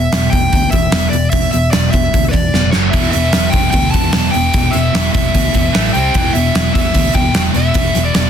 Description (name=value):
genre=hard rock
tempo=150 BPM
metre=4/4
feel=straight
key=E minor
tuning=A4 = 440 Hz
part: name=dark smooth lead guitar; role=melody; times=0.0-8.3 s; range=B4 to A5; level=-18 LUFS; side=equal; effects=overdrive, digital delay
part: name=biting overdriven guitar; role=riff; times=0.0-8.3 s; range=E2 to C4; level=-21 LUFS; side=left 10 dB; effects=none
part: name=overdriven semi-hollow guitar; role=riff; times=0.0-8.3 s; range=E2 to C4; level=-22 LUFS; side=right 12 dB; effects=none
part: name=picked electric bass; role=bass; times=0.0-8.3 s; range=E1 to E2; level=-18 LUFS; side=equal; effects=none
part: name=gated 80s drum kit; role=drums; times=0.1-8.2 s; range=hi-hat, kick drum, snare drum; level=-15 LUFS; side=equal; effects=none
part: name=scooped high-gain guitar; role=riff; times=2.9-8.3 s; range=E2 to C4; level=-21 LUFS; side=right 2 dB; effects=distortion
room=light reverb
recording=dense, heavily limited modern master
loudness=-11 LUFS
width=side -8 dB against mid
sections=0.0-8.3 A section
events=drum fill 2.5-2.9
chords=0.0 E5; 2.7 F#5; 2.9 Em; 5.8 A5; 6.0 C5; 6.2 E5